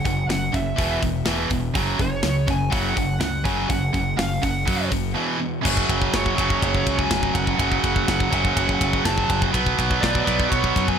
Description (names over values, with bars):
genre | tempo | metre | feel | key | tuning
heavy metal | 123 BPM | 4/4 | straight | unclear | A4 = 441 Hz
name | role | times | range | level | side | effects
high-gain lead guitar | melody | 0.0-11.0 s | C#5 to A5 | -27 LUFS | right 2 dB | distortion, ping-pong delay
high-gain distorted guitar | riff | 0.0-11.0 s | E2 to B3 | -26 LUFS | left 13 dB | distortion
tight distorted guitar | riff | 0.0-11.0 s | E2 to B3 | -25 LUFS | right 13 dB | distortion
growling fingered electric bass | bass | 0.0-11.0 s | E1 to F#2 | -27 LUFS | left 1 dB | overdrive
tight metal drum kit | drums | 0.1-11.0 s | crash cymbal, hi-hat, kick drum, ride cymbal, snare drum | -25 LUFS | left 1 dB | none
room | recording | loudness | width
little or no reverb | none | -19 LUFS | side -7 dB against mid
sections
0.0-5.6 A section; 5.6-11.0 B section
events
break 5.2-5.6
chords
0.0 F#5; 0.8 E5; 1.7 F#5; 5.2 E5; 5.6 F#5; 9.5 Bm